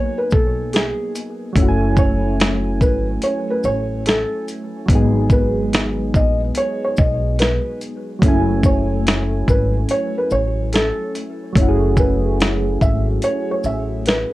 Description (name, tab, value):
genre	lo-fi hip hop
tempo	72 BPM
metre	4/4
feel	swing 65% on 16ths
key	F# dorian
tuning	A4 = 438 Hz
part	felt-muted upright piano	melody	0.0-14.3 s	G#4 to E5	-22 LUFS	equal	low-pass filter
part	soft electric-piano-like synth keys	accompaniment	0.0-14.3 s	F#3 to G#5	-22 LUFS	equal	chorus, phaser, cassette tape, low-pass filter
part	upright bass	bass	0.3-14.2 s	F#1 to B1	-21 LUFS	equal	none
part	dusty soul sampler-style drum kit	drums	0.3-14.3 s	hi-hat, kick drum, shaker, snare drum	-17 LUFS	equal	none
room	moderate small room reverb, RT60 0.5 s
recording	worn, warbling old tape, cassette tape, warbly pitch drift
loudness	-16 LUFS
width	side -17 dB against mid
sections	0.0-14.3 A section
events	break 13.2-14.3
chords	0.0 G#m9; 1.6 F#m9; 4.9 G#m7; 8.2 F#m9